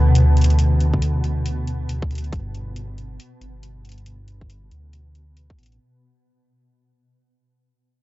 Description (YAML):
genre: deep dubstep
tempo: 138 BPM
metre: 4/4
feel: swing 61% on 16ths, half-time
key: unclear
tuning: A4 = 444 Hz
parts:
  - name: granular cloud pad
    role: sustained chords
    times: 0.0-5.9 s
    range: B2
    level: -24 LUFS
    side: left 1 dB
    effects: built-in reverb
  - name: dark detuned saw bass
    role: bass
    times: 0.0-5.8 s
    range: G1 to D2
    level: -18 LUFS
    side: equal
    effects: none
  - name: electronic hi-hat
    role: drums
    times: 0.2-5.8 s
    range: none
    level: -36 LUFS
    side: left 2 dB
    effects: none
  - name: electronic kick drum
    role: drums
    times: 0.9-5.6 s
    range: none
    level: -26 LUFS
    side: equal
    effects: none
room: little or no reverb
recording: dry, gritty hardware recording, transformer saturation, cassette tape, nothing above 7.7 kHz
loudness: -17 LUFS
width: side -18 dB against mid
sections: 0.0-5.8 A section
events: fade-out 0.0-5.8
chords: 0.0 Bm; 2.3 G